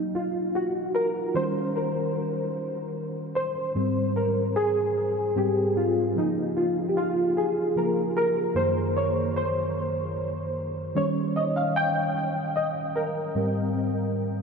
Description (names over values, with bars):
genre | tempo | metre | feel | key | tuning
R&B | 50 BPM (dotted quarters) | 6/8 | straight | Ab major | A4 = 441 Hz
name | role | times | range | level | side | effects
reed electric piano | solo | 0.0-14.4 s | Gb2 to G5 | -24 LUFS | equal | ensemble chorus, ping-pong delay
room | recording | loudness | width
wet huge ambient reverb, RT60 7.3 s | dreamy mix soaked in reverb | -24 LUFS | side -5 dB against mid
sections
0.0-14.4 A section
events
reed electric piano solo 0.0-14.4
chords
0.0 Gb6; 1.4 Eb7; 3.8 Abmaj7; 6.2 Db6; 8.6 Gb6; 11.0 Eb7; 13.4 Abmaj7